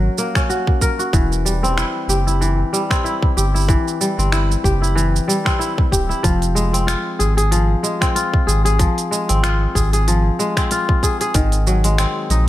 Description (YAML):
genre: folktronica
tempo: 94 BPM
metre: 4/4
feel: swing 56% on 16ths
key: unclear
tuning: A4 = 440 Hz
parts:
  - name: kora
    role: arpeggios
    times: 0.0-12.5 s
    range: Eb3 to Bb4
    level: -19 LUFS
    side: left 1 dB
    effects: low-pass filter, digital delay
  - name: warm sub bass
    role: bass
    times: 0.0-12.5 s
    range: D1 to Bb1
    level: -17 LUFS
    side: equal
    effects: none
  - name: organic electronic drum kit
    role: drums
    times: 0.2-12.4 s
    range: finger snaps, hi-hat, shaker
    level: -24 LUFS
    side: right 3 dB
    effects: none
  - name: electronic kick drum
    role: drums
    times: 0.4-11.5 s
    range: none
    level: -18 LUFS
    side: equal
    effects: none
room: digital ambience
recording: none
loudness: -15 LUFS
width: side -14 dB against mid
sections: 0.0-12.5 A section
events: none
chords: 0.0 Gb; 1.1 C/E; 6.2 Fm; 11.3 Ab7